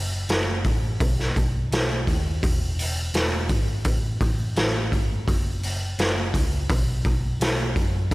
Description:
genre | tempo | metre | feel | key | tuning
quiet-loud alternative rock | 84 BPM | 4/4 | straight | unclear | A4 = 440 Hz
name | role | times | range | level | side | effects
hollow-body short-scale picked electric bass | bass | 0.0-8.1 s | E1 to F#2 | -26 LUFS | equal | none
raw garage drum kit | drums | 0.3-8.1 s | hi-hat, kick drum, snare drum | -23 LUFS | equal | none
room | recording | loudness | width
light reverb | none | -21 LUFS | side -20 dB against mid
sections
0.0-8.1 A section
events
none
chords
none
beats
0.29 1.00 1.71 | 2.42 3.13 3.85 4.56 | 5.27 5.98 6.69 7.40 | 8.11

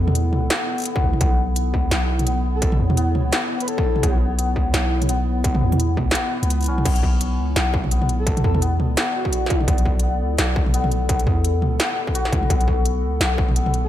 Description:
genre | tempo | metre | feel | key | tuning
half-time drum and bass | 170 BPM | 4/4 | swing 58% on 16ths, half-time | B minor | A4 = 442 Hz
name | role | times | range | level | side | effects
dark analog pad | sustained chords | 0.0-13.9 s | B3 to D5 | -28 LUFS | left 1 dB | chorus, sidechain pumping
santur | arpeggios | 0.0-13.9 s | B3 to B4 | -28 LUFS | left 3 dB | tape echo
long sustained 808-style bass | bass | 0.0-13.9 s | B1 to E2 | -21 LUFS | equal | none
industrial drum kit | drums | 0.1-13.8 s | crash cymbal, hi-hat, snare drum, toms | -24 LUFS | right 1 dB | none
electronic kick drum | drums | 1.0-13.5 s | none | -22 LUFS | equal | distortion
breathy flute-like synth lead | melody | 2.5-4.2, 8.2-9.7, 13.8-13.9 s | F#4 to B4 | -30 LUFS | left 1 dB | lush chorus, tape echo
room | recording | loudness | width
little or no reverb | none | -18 LUFS | side -12 dB against mid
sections
0.0-6.9 A section; 6.9-13.9 A section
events
drop 0.0-6.9, 6.9-13.9; break 6.2-6.9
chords
0.0 Bmadd9; 1.2 Aadd9/B; 6.9 Bmadd9; 12.5 Aadd9/B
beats
0.15 0.50 0.86 | 1.21 1.56 1.92 2.27 | 2.62 2.97 3.33 3.68 | 4.03 4.38 4.74 5.09 | 5.44 5.80 6.15 6.50 | 6.86 7.21 7.56 7.92 | 8.27 8.62 8.97 9.33 | 9.68 10.03 10.38 10.74 | 11.09 11.44 11.80 12.15 | 12.50 12.86 13.21 13.56

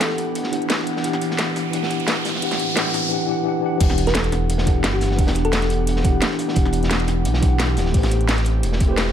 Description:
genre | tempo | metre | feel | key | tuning
liquid drum and bass | 174 BPM | 4/4 | straight | E minor | A4 = 440 Hz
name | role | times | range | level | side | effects
thumb-piano-like synth pluck | melody | 0.0-0.4, 4.1-5.9 s | G4 to B4 | -28 LUFS | left 1 dB | chorus, tape echo
tine electric piano | accompaniment | 0.0-9.1 s | E3 to F#5 | -24 LUFS | left 2 dB | overdrive, fast stereo tremolo, digital delay
airy breathy pad | sustained chords | 0.0-9.1 s | E3 to F#5 | -29 LUFS | equal | chorus
crunchy breakbeat drum kit | drums | 0.0-9.1 s | hi-hat, snare drum | -29 LUFS | equal | high-pass filter on hats, high-pass filter on snare, high-pass filter on room
garage drum kit | drums | 0.0-9.1 s | crash cymbal, hi-hat, snare drum | -25 LUFS | equal | high-pass filter on hats, high-pass filter on snare, high-pass filter on cymbals
riser and sub drop | sound effects | 0.2-5.2 s | none | -28 LUFS | right 1 dB | none
smooth gliding synth bass | bass | 3.8-9.1 s | D1 to B1 | -21 LUFS | equal | none
electronic kick drum | drums | 3.8-8.9 s | none | -18 LUFS | equal | none
room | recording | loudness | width
light reverb | none | -18 LUFS | side -10 dB against mid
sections
0.0-3.8 A section; 3.8-9.1 B section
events
build-up 0.0-3.8; filter sweep on tine electric piano 0.0-3.8; riser 0.2-3.1; drop 3.8-9.1; impact 3.8-5.2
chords
0.0 Em9; 2.4 Am9; 3.8 Em9; 7.9 Am9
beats
0.01 0.36 0.70 | 1.05 1.39 1.74 2.08 | 2.43 2.77 3.12 3.46 | 3.81 4.15 4.50 4.84 | 5.18 5.53 5.87 6.22 | 6.56 6.91 7.25 7.60 | 7.94 8.29 8.63 8.98

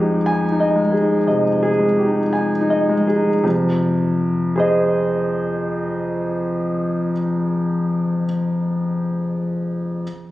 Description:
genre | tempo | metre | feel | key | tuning
neoclassical minimalist piano | 54-61 BPM | 4/4 | rubato | F minor | A4 = 435 Hz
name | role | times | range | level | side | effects
warm concert grand piano | solo | 0.0-10.0 s | F2 to Ab5 | -17 LUFS | equal | none
room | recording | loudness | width
moderate concert hall reverb, RT60 2.4 s | recorded on a phone in the room, club reverb, compression | -17 LUFS | side -15 dB against mid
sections
0.0-3.4 A section; 3.4-7.8 B section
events
slowing down 0.0-3.4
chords
0.0 Fm7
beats
0.29 1.30 2.34 | 3.44 4.54 5.63 6.72

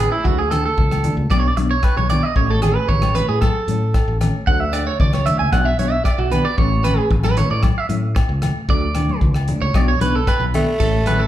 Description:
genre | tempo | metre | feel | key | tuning
highlife guitar band | 114 BPM | 4/4 | straight | A major | A4 = 440 Hz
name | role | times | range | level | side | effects
mellow electric guitar | accompaniment | 0.0-11.2 s | E3 to D4 | -26 LUFS | left 1 dB | phaser
electric guitar at the edge of break-up | arpeggios | 0.0-11.3 s | E4 to G#5 | -21 LUFS | right 4 dB | spring reverb
fingered electric bass | bass | 0.0-11.3 s | A1 to A2 | -20 LUFS | equal | none
agogo bells | percussion | 0.0-11.2 s | none | -32 LUFS | left 8 dB | none
damped 70s drum kit | drums | 0.3-11.2 s | crash cymbal, hi-hat, kick drum, rim click | -20 LUFS | equal | none
congas | percussion | 0.5-11.2 s | none | -24 LUFS | left 2 dB | none
growling tenor saxophone | melody | 10.5-11.3 s | A3 | -21 LUFS | right 1 dB | none
room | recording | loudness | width
wet large studio reverb, RT60 0.9 s | band playing live in one room | -15 LUFS | side -12 dB against mid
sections
0.0-10.8 A section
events
clean electric guitar solo 0.0-10.8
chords
0.3 D; 1.3 Bm; 2.4 A; 4.5 D; 5.5 Bm; 6.6 A; 8.7 D; 9.7 Bm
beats
| 0.26 0.78 1.31 1.84 | 2.37 2.89 3.42 3.95 | 4.48 5.00 5.53 6.06 | 6.58 7.11 7.64 8.17 | 8.69 9.22 9.75 10.28 | 10.80

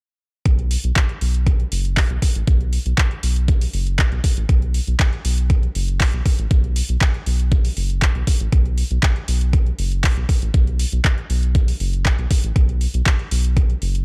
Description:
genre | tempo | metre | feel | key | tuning
acid house | 119 BPM | 4/4 | straight | unclear | A4 = 440 Hz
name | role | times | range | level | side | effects
round analog bass | bass | 0.5-14.0 s | F#1 to B1 | -22 LUFS | equal | sidechain pumping
electronic kick drum | drums | 0.5-13.7 s | none | -19 LUFS | equal | none
punchy analog drum machine | drums | 0.5-14.0 s | handclaps, hi-hat | -28 LUFS | equal | none
room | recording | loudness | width
little or no reverb | none | -19 LUFS | mono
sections
0.5-14.0 A section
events
none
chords
none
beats
| 0.46 0.96 1.47 1.97 | 2.47 2.98 3.48 3.99 | 4.49 5.00 5.50 6.00 | 6.51 7.01 7.52 8.02 | 8.53 9.03 9.53 10.04 | 10.54 11.05 11.55 12.05 | 12.56 13.06 13.57

